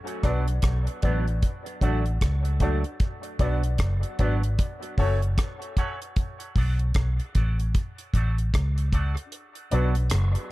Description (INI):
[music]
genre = dub reggae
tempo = 76 BPM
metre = 4/4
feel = swing 61% on 16ths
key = B minor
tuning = A4 = 442 Hz
[part]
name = deep reggae drum kit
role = drums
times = 0.1-10.5 s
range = hi-hat, kick drum, rim click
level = -26 LUFS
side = equal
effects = none
[part]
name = electric guitar with an envelope filter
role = accompaniment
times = 0.2-9.9 s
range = F#3 to F#4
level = -35 LUFS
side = right 5 dB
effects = high-pass filter, dub echo
[part]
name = clear upright piano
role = stabs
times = 0.2-9.9 s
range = C#4 to D5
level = -34 LUFS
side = left 4 dB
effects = high-pass filter, dub echo
[part]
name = vintage muted fingered electric bass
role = bass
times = 0.2-10.3 s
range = F#1 to C#2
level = -24 LUFS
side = equal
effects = none
[sound]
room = little or no reverb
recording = echo-heavy mix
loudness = -23 LUFS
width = side -18 dB against mid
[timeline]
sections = 0.0-10.5 A section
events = filter sweep 3.0-9.3; kick muted 9.3-10.5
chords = 0.0 Bm; 1.4 D; 3.0 Bm; 4.6 F#m; 6.2 Bm; 7.7 D; 9.3 Bm